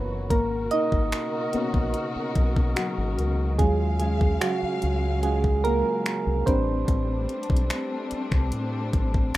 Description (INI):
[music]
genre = contemporary R&B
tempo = 73 BPM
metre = 4/4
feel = straight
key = unclear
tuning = A4 = 440 Hz
[part]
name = soft electric-piano-like synth keys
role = accompaniment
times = 0.0-9.4 s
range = F#3 to D#5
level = -26 LUFS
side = right 2 dB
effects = chorus
[part]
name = warm studio string section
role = sustained chords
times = 0.0-9.4 s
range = B2 to E#5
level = -33 LUFS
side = left 3 dB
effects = none
[part]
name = deep dub fingered electric bass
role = bass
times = 0.0-9.4 s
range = F#1 to A2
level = -26 LUFS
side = equal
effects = none
[part]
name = smooth R&B drum kit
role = drums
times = 0.3-9.4 s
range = finger snaps, hi-hat, kick drum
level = -25 LUFS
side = equal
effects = none
[sound]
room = light reverb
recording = rough home demo mix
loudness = -22 LUFS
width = side -16 dB against mid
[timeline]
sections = 0.0-9.4 A section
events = synth keys solo 0.0-9.4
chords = 0.3 G#m11; 3.6 D#m11; 6.5 Am11